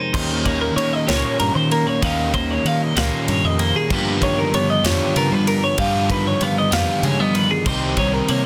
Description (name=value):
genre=math rock and midwest emo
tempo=64 BPM (dotted quarters)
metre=6/8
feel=straight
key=unclear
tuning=A4 = 441 Hz
part: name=twelve-string electric guitar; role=accompaniment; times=0.0-8.5 s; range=F2 to Bb4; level=-27 LUFS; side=equal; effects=none
part: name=twelve-string electric guitar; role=arpeggios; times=0.0-8.4 s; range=Ab4 to F5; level=-24 LUFS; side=equal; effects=none
part: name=overdriven semi-hollow guitar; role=riff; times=0.1-8.5 s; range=G2 to G4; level=-26 LUFS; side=equal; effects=none
part: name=growling fingered electric bass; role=bass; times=0.1-8.5 s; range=C2 to G3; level=-25 LUFS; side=equal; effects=overdrive
part: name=modern studio drum kit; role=drums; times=0.1-8.4 s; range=crash cymbal, kick drum, ride cymbal, snare drum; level=-28 LUFS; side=equal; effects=none
room=light reverb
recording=dense, heavily limited modern master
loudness=-19 LUFS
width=mono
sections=0.1-8.5 A section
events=none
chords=0.1 Eb13; 3.9 G7alt; 7.7 Cm7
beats=| 0.14 1.09 | 2.03 2.97 | 3.91 4.85 | 5.79 6.72 | 7.66